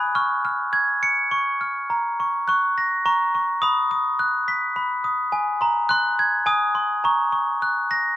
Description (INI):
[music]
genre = children's music, lullaby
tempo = 104 BPM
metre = 3/4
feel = straight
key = F# major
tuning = A4 = 441 Hz
[part]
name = glockenspiel with rubber mallets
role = solo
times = 0.0-8.2 s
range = G#5 to C#7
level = -19 LUFS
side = equal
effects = none
[sound]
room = light reverb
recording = band playing live in one room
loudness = -19 LUFS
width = side -13 dB against mid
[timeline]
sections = 0.0-1.9 A section; 1.9-8.2 B section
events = none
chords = 0.1 C#; 1.9 F#; 3.6 B; 5.3 G#7; 7.0 F#